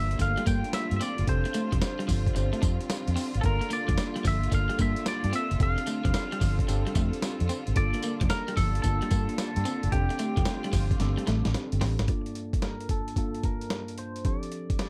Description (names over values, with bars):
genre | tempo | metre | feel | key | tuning
R&B, new jack swing | 111 BPM | 4/4 | swing 67% on 16ths | G minor | A4 = 439 Hz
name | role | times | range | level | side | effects
twangy electric guitar | melody | 0.0-14.9 s | G4 to G5 | -37 LUFS | equal | phaser, low-pass filter, slapback echo
bell-like tine electric piano | accompaniment | 0.0-14.9 s | G2 to A5 | -38 LUFS | equal | phaser, low-pass filter
clear studio string section | sustained chords | 0.0-12.1 s | D3 to A4 | -41 LUFS | equal | none
electric guitar at the edge of break-up | riff | 0.0-12.0 s | F3 to D4 | -37 LUFS | equal | lush chorus
vintage muted fingered electric bass | bass | 0.0-12.1 s | F1 to G2 | -30 LUFS | equal | none
dusty soul sampler-style drum kit | drums | 0.1-14.9 s | hi-hat, kick drum, snare drum, tambourine | -32 LUFS | equal | overdrive
room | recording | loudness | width
little or no reverb | none | -28 LUFS | mono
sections
0.0-12.1 A section; 12.1-14.9 B section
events
drum fill 11.0-12.1; filter sweep 12.1-14.9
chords
0.0 Gm9; 1.3 F69; 3.4 Gm9; 5.6 F69; 7.8 Gm9; 9.9 F69; 12.1 Gm9; 14.2 F69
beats
0.20 0.74 | 1.28 1.82 2.36 2.90 | 3.44 3.98 4.52 5.06 | 5.60 6.14 6.68 7.22 | 7.76 8.30 8.84 9.38 | 9.93 10.47 11.01 11.55 | 12.09 12.63 13.17 13.71 | 14.25 14.79